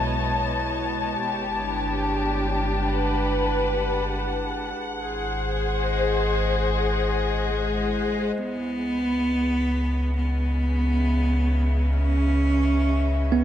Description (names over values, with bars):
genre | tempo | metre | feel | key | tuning
ambient | 67 BPM | 4/4 | straight | unclear | A4 = 440 Hz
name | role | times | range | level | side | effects
muted studio string section | sustained chords | 0.0-13.4 s | B2 to A5 | -26 LUFS | left 2 dB | none
warm sub bass | bass | 0.0-13.4 s | G1 to C#2 | -25 LUFS | equal | none
analog drone | drone | 0.0-8.5 s | G#3 to E4 | -36 LUFS | right 1 dB | chorus
warm cello | melody | 7.5-13.4 s | G#3 to C#4 | -25 LUFS | right 1 dB | dub echo
bell-like tine electric piano | arpeggios | 13.3-13.4 s | B3 | -18 LUFS | right 7 dB | auto-pan
room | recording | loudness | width
wet spring reverb, RT60 2.9 s | echo-heavy mix | -22 LUFS | side -11 dB against mid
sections
0.0-8.4 A section; 8.4-13.4 B section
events
none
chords
0.0 B7; 1.2 Gmaj7; 4.8 G#7; 8.4 C#m7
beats
0.30 | 1.20 2.09 2.99 3.88 | 4.78 5.67 6.57 7.47 | 8.36 9.26 10.15 11.05 | 11.94 12.84